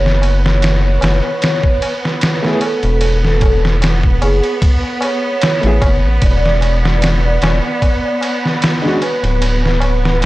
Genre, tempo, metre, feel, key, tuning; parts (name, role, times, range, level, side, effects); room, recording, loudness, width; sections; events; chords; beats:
trip hop; 75 BPM; 4/4; swing 54% on 16ths; F# minor; A4 = 440 Hz
pure breathy sine lead; melody; 0.0-10.2 s; G#4 to D5; -20 LUFS; right 1 dB; analog chorus, vintage 12-bit sampler grit, tape echo
clear symphonic string section; sustained chords; 0.0-10.3 s; B3; -23 LUFS; right 1 dB
round analog bass; bass; 0.0-10.3 s; D1 to A1; -14 LUFS; equal
wind-like tuned noise texture; texture; 0.0-10.3 s; B4; -28 LUFS; right 4 dB; built-in reverb
trip hop sampler-style drum kit; drums; 0.1-10.3 s; kick drum, ride cymbal, snare drum; -16 LUFS; equal
tabla; percussion; 0.2-10.3 s; -27 LUFS; left 2 dB
dark upright piano; accompaniment; 2.4-9.0 s; G#3 to G#4; -20 LUFS; equal; tremolo, tape echo
digital ambience; dry, gritty hardware recording, cassette tape; -12 LUFS; side -18 dB against mid
0.0-10.3 A section
0.0 F#m11; 6.2 E7(no3)
0.62 1.42 2.22 | 3.02 3.82 4.62 5.42 | 6.22 7.02 7.82 8.62 | 9.42 10.22